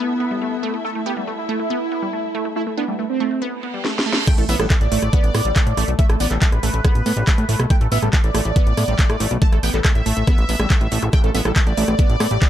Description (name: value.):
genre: psychedelic trance.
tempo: 140 BPM.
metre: 4/4.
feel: straight.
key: unclear.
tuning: A4 = 440 Hz.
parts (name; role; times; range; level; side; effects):
wide unison lead; melody; 0.0-12.5 s; A3 to A5; -24 LUFS; right 1 dB; phaser, vintage 12-bit sampler grit, sidechain pumping, dub echo.
wide unison pluck; riff; 0.0-12.5 s; G3 to B3; -26 LUFS; right 1 dB; auto-pan, vintage 12-bit sampler grit, sidechain pumping, tape echo.
dark studio string section; texture; 0.0-3.4 s; E4 to E5; -32 LUFS; left 2 dB; sidechain pumping.
reverse cymbal, impact and zap; sound effects; 3.6-6.0, 11.0-11.1 s; none; -29 LUFS; right 2 dB; none.
drum and bass drum kit; drums; 3.8-12.5 s; crash cymbal, handclaps, hi-hat, rim click, snare drum; -24 LUFS; equal; overdrive, low-pass filter on snare, low-pass filter on hats, low-pass filter on cymbals, low-pass filter on room.
electronic kick drum; drums; 4.3-12.5 s; none; -15 LUFS; equal; overdrive.
fat analog bass; bass; 4.4-12.4 s; A1 to A2; -20 LUFS; equal; none.
room: little or no reverb.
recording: dark, warm production.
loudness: -16 LUFS.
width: side -11 dB against mid.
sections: 0.0-4.3 A section; 4.3-12.5 B section.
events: reverse cymbal 3.6-4.3; drum fill 3.8-4.3; drop 4.3-12.5; impact 4.3-6.0.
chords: 0.0 A5.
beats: 0.42 | 0.85 1.27 1.70 2.13 | 2.56 2.99 3.42 3.85 | 4.27 4.70 5.13 5.56 | 5.99 6.42 6.85 7.27 | 7.70 8.13 8.56 8.99 | 9.42 9.85 10.27 10.70 | 11.13 11.56 11.99 12.42.